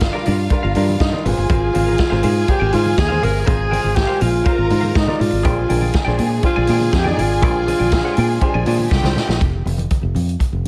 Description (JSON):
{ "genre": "disco", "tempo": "121 BPM", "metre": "4/4", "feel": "straight", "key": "unclear", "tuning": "A4 = 440 Hz", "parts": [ { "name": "clear symphonic string section", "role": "second line", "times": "0.0-9.4 s", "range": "F4 to Bb5", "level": "-29 LUFS", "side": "equal", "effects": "none" }, { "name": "semi-hollow electric guitar", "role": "accompaniment", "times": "0.0-9.3 s", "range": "F4 to Ab5", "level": "-31 LUFS", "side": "equal", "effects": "none" }, { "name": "warm baby grand piano", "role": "accompaniment", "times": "0.0-9.4 s", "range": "Bb2 to D5", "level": "-28 LUFS", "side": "equal", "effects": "none" }, { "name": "fingered electric bass", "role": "bass", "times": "0.0-10.7 s", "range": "F1 to Bb2", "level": "-21 LUFS", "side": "equal", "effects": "none" }, { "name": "vintage drum kit", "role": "drums", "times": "0.0-10.7 s", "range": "hi-hat, kick drum, snare drum", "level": "-23 LUFS", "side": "equal", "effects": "none" }, { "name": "congas", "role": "percussion", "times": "0.0-10.6 s", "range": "none", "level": "-30 LUFS", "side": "equal", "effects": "none" }, { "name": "breathy tenor saxophone", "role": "melody", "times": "1.0-8.9 s", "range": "Eb4 to Bb4", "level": "-22 LUFS", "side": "equal", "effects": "none" } ], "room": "studio ambience", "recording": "none", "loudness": "-17 LUFS", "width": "mono", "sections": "0.0-9.4 A section; 9.4-10.7 B section", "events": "drum fill 8.9-9.4", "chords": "0.0 Gm7; 1.2 Ab69; 5.5 Bb13; 9.4 N.C." }